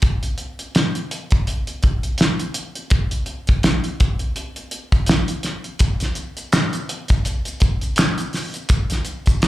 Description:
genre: R&B.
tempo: 83 BPM.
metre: 4/4.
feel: swing 58% on 16ths.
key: none.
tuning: none.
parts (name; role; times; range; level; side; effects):
cloth-damped thuddy drum kit; drums; 0.0-9.5 s; hi-hat, kick drum, snare drum; -18 LUFS; equal; none.
maracas and finger snaps; percussion; 5.8-9.5 s; none; -28 LUFS; equal; slapback echo.
room: light reverb.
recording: live gig heard through the venue's PA, club reverb.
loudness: -18 LUFS.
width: side -16 dB against mid.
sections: 0.0-9.5 A section.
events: none.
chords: none.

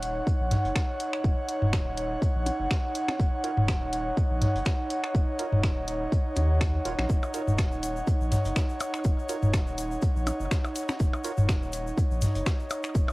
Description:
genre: minimal techno.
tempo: 123 BPM.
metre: 4/4.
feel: swing 55% on 16ths.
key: Eb minor.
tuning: A4 = 440 Hz.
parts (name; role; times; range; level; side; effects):
round analog bass; bass; 0.0-13.0 s; Eb1 to Eb2; -31 LUFS; equal; sidechain pumping.
house drum kit; drums; 0.0-12.9 s; finger snaps, hi-hat; -34 LUFS; equal; overdrive, cassette tape.
vintage drum kit; drums; 0.0-13.1 s; hi-hat, shaker, snare drum; -44 LUFS; equal; high-pass filter on hats, cassette tape, high-pass filter on snare, high-pass filter on perc, high-pass filter on room.
airy breathy pad; texture; 0.0-13.1 s; Eb4 to Gb5; -31 LUFS; right 1 dB; chorus, sidechain pumping, cassette tape.
electronic kick drum; drums; 0.3-13.1 s; none; -26 LUFS; equal; overdrive, cassette tape.
electronic toms and percussion blips; percussion; 0.5-13.1 s; none; -26 LUFS; equal; cassette tape.
percussive organ stab; stabs; 3.4-11.3 s; F4 to Db5; -39 LUFS; right 6 dB; wide subtle chorus, cassette tape, tape echo.
tube shaker; percussion; 7.1-13.1 s; none; -46 LUFS; left 7 dB; none.
room: light reverb, small room ambience.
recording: home recording on cassette.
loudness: -24 LUFS.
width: side -21 dB against mid.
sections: 0.0-13.1 A section.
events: none.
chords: 0.0 Ebm7.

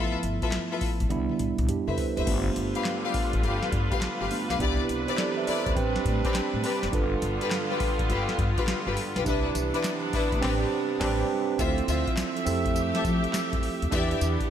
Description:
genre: R&B, new jack swing.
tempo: 103 BPM.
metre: 4/4.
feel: swing 65% on 16ths.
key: unclear.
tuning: A4 = 440 Hz.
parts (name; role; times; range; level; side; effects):
tine electric piano; accompaniment; 0.0-14.5 s; F3 to B5; -30 LUFS; right 6 dB; none.
rich symphonic string section; stabs; 0.0-14.2 s; C4 to F5; -32 LUFS; left 6 dB; none.
upright bass; bass; 0.0-14.4 s; F#1 to F3; -30 LUFS; left 1 dB; none.
booming analog drum machine; drums; 0.2-14.5 s; crash cymbal, handclaps, hi-hat, kick drum, snare drum, tambourine, toms; -30 LUFS; left 1 dB; gated reverb.
bright symphonic string section; sustained chords; 2.3-14.5 s; C3 to E5; -32 LUFS; right 1 dB; none.
room: light reverb, digital ambience.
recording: none.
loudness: -24 LUFS.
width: side -9 dB against mid.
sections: 0.0-2.3 A section; 2.3-11.6 B section; 11.6-14.5 C section.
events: drum fill 1.1-2.3; tine electric piano fill 5.2-6.9; band accent 10.4-11.6.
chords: 0.0 G13; 1.1 Cmaj7; 2.3 G7; 4.6 Cmaj9; 5.8 Am11; 6.9 G7; 9.3 Cmaj9; 10.4 Am11; 11.6 Dm9; 12.5 Fmaj9; 13.9 Em7.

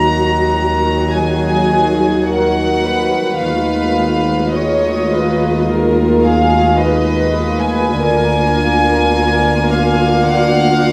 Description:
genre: classical.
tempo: 53 BPM.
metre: 4/4.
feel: rubato.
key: Eb minor.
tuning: A4 = 444 Hz.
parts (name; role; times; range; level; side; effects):
warm studio violin section; melody; 0.0-10.9 s; Eb5 to Bb5; -20 LUFS; equal; none.
warm studio viola section; accompaniment; 0.0-10.9 s; Gb3 to Gb4; -20 LUFS; equal; none.
concert harp; arpeggios; 0.0-10.9 s; D3 to Cb5; -24 LUFS; equal; none.
warm symphonic cello section; bass; 0.0-10.9 s; D3 to Eb3; -24 LUFS; equal; none.
warm symphonic double bass section; bass; 0.0-10.9 s; D2 to Eb2; -22 LUFS; equal; none.
warm symphonic violin section; second line; 1.1-10.9 s; Ab4 to F5; -22 LUFS; equal; none.
room: wet concert hall reverb, RT60 2.4 s.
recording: none.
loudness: -14 LUFS.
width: mono.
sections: 0.0-10.9 A section.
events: none.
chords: 0.0 Ebm; 3.4 Fm7b5/Eb; 8.0 Bb/D.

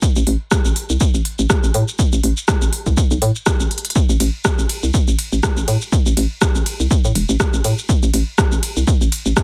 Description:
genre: minimal techno.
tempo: 122 BPM.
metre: 4/4.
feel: swing 56% on 16ths.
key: A minor.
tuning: A4 = 440 Hz.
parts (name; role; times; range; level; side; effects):
electronic kick drum; drums; 0.0-9.4 s; none; -19 LUFS; equal; none.
garage drum kit; drums; 0.0-9.4 s; hi-hat, ride cymbal, rim click, shaker; -24 LUFS; equal; none.
hollow knocking FM bass; bass; 0.2-9.3 s; E1 to A2; -20 LUFS; equal; sidechain pumping.
room: little or no reverb.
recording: none.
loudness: -17 LUFS.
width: mono.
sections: 0.0-9.4 A section.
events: drum fill 3.7.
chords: none.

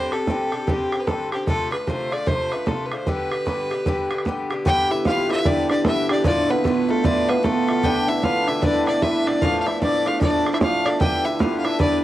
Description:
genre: celtic folk, Celtic hornpipe.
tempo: 151 BPM.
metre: 4/4.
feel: swing 62% on 8ths.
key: G mixolydian.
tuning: A4 = 440 Hz.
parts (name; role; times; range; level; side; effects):
clear fiddle; melody; 0.0-12.0 s; G4 to G5; -24 LUFS; left 1 dB; cassette tape.
Irish bouzouki; accompaniment; 0.0-12.0 s; G2 to G4; -26 LUFS; left 3 dB; cassette tape.
bodhran; percussion; 0.1-11.9 s; none; -24 LUFS; right 1 dB; none.
cimbalom; second line; 4.7-12.0 s; A3 to G4; -22 LUFS; right 2 dB; cassette tape.
room: light reverb, small room reverb.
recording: home recording on cassette.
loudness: -19 LUFS.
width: side -14 dB against mid.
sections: 0.0-4.7 A section; 4.7-12.0 B section.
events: none.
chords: 0.0 Csus2; 1.5 Dm7; 3.1 G; 6.3 Dm; 7.8 G; 9.4 Dm; 11.0 G.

